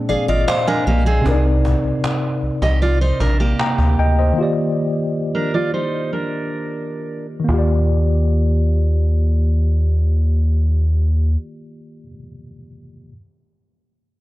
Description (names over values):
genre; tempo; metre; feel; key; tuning
contemporary R&B; 77 BPM; 4/4; straight; Eb major; A4 = 441 Hz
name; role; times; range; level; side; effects
tine electric piano; accompaniment; 0.0-13.1 s; Bb2 to Bb5; -22 LUFS; left 1 dB; overdrive, fast stereo tremolo
hollow soft pad; sustained chords; 0.0-1.2 s; Ab3 to D4; -32 LUFS; right 1 dB; chorus
fingerpicked steel-string acoustic guitar; arpeggios; 0.1-7.3 s; Bb3 to F5; -22 LUFS; right 3 dB; tape echo
round analog bass; bass; 0.1-11.4 s; Ab1 to Eb2; -16 LUFS; equal; none
cajon; drums; 0.1-7.7 s; none; -27 LUFS; equal; none
room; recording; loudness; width
light reverb, studio ambience; dark, warm production, low-pass filter; -16 LUFS; side -17 dB against mid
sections
0.0-1.3 A section; 1.3-7.5 B section; 7.5-10.6 C section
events
break 0.0-1.3, 4.4-7.5; tine electric piano fill 0.0-1.3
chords
0.0 Bb9; 1.3 Cm9; 4.4 Ebmaj9